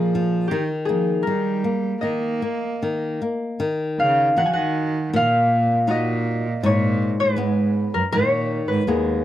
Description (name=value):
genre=fado-style ballad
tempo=76-81 BPM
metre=4/4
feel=rubato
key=Eb major, Eb minor from 3.6 s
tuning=A4 = 440 Hz
part: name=concert harp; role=melody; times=0.0-9.2 s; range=G4 to Ab5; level=-22 LUFS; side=left 1 dB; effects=none
part: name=warm cello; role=second line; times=0.0-9.2 s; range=Eb2 to Bb3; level=-24 LUFS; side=right 3 dB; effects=none
part: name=flamenco guitar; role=accompaniment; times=0.0-9.2 s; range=Ab2 to Gb4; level=-24 LUFS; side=left 2 dB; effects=none
room=little or no reverb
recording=dry, close 1970s-style studio recording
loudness=-19 LUFS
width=side -12 dB against mid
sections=0.0-3.6 A section; 3.6-9.2 B section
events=none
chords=0.0 Bb5; 0.5 Eb; 3.6 Ebmadd9; 6.6 Abmadd9